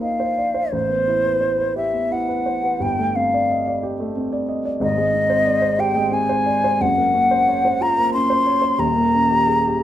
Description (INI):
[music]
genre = classical, impressionist duo for flute and grand piano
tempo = 89 BPM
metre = 3/4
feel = uneven beats, rubato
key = unclear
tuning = A4 = 438 Hz
[part]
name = mellow hollow silver concert flute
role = melody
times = 0.0-9.8 s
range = C5 to C6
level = -18 LUFS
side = left 1 dB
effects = none
[part]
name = dark baby grand piano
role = accompaniment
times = 0.0-9.8 s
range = Eb1 to Eb5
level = -21 LUFS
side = right 1 dB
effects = none
[sound]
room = light reverb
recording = minimal, uncompressed stereo recording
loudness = -17 LUFS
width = side -12 dB against mid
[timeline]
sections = 0.0-9.8 A section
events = none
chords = 0.0 Bbsus4; 0.7 Am9; 2.8 G9sus4; 4.8 Abmaj7; 6.8 Gbmaj7#11; 8.8 Eb7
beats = 0.01 | 0.74 1.43 2.13 | 2.83 3.51 4.18 | 4.83 5.48 6.15 | 6.82 7.49 8.15 | 8.81 9.49